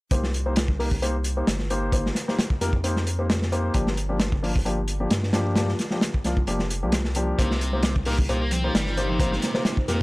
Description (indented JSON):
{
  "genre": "breakbeat, breaks",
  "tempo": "132 BPM",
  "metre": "4/4",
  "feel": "straight",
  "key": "C minor",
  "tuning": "A4 = 441 Hz",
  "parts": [
    { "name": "dark baby grand piano", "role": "stabs", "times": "0.1-10.0 s", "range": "F3 to C5", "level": "-28 LUFS", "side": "left 1 dB", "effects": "vintage 12-bit sampler grit, low-pass filter, tape echo" },
    { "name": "saturated sub bass", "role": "bass", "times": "0.1-10.0 s", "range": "F1 to G2", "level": "-26 LUFS", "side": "equal", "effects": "tube saturation" },
    { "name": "crunchy breakbeat drum kit", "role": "drums", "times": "0.1-10.0 s", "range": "hi-hat, kick drum, snare drum", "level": "-24 LUFS", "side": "equal", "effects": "none" },
    { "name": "dark analog pad", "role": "sustained chords", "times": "7.4-10.0 s", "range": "Bb3 to C5", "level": "-35 LUFS", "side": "right 2 dB", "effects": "none" },
    { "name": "biting overdriven guitar", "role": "riff", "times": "7.4-10.0 s", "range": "Bb2 to C4", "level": "-30 LUFS", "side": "equal", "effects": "tape echo" },
    { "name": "congas", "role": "percussion", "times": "7.7-9.6 s", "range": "none", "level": "-35 LUFS", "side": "left 1 dB", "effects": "none" }
  ],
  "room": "small room ambience",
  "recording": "dry, gritty hardware recording",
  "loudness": "-22 LUFS",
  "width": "side -22 dB against mid",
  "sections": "0.1-10.0 A section",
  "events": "filter sweep on sub bass 0.1-10.0",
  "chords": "0.1 Cm7; 3.7 Gm7; 7.4 Cm7"
}